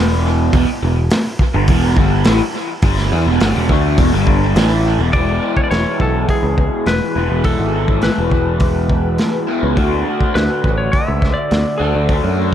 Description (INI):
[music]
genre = psychedelic rock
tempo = 104 BPM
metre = 4/4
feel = straight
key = E mixolydian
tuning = A4 = 440 Hz
[part]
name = crunchy overdriven guitar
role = riff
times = 0.0-12.5 s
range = E2 to F#4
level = -18 LUFS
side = equal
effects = phaser, dub echo
[part]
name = picked electric bass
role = bass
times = 0.0-12.5 s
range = E1 to F#2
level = -17 LUFS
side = equal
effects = none
[part]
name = crunchy breakbeat drum kit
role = drums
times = 0.5-12.2 s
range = hi-hat, kick drum, snare drum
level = -17 LUFS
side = equal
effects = dub echo
[part]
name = clean lap steel guitar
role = melody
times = 5.1-12.5 s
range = G#4 to E5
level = -21 LUFS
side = left 1 dB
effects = dub echo
[sound]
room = light reverb, small room ambience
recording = echo-heavy mix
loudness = -13 LUFS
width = side -10 dB against mid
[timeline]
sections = 0.0-5.1 A section; 5.1-12.5 B section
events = none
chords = 0.0 E5; 5.1 E; 9.8 D